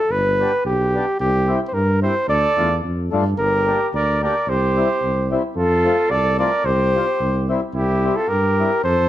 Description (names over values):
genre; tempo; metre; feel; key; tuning
alpine folk, alpine dance band; 110 BPM; 2/4; straight; unclear; A4 = 440 Hz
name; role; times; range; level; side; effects
warm flugelhorn; melody; 0.0-9.1 s; G4 to D5; -19 LUFS; equal; none
mellow tuba; bass; 0.1-9.1 s; G1 to G2; -22 LUFS; equal; none
mellow accordion; accompaniment; 0.4-8.7 s; G3 to G4; -26 LUFS; left 3 dB; none
mellow trumpet; second line; 2.3-9.1 s; E4 to Bb4; -26 LUFS; right 5 dB; none
room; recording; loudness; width
light reverb; none; -16 LUFS; side -13 dB against mid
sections
0.0-9.1 A section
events
none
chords
0.1 G; 1.2 C; 2.3 Dm; 3.4 Gm; 4.5 C; 5.6 F; 6.6 Csus4; 7.2 C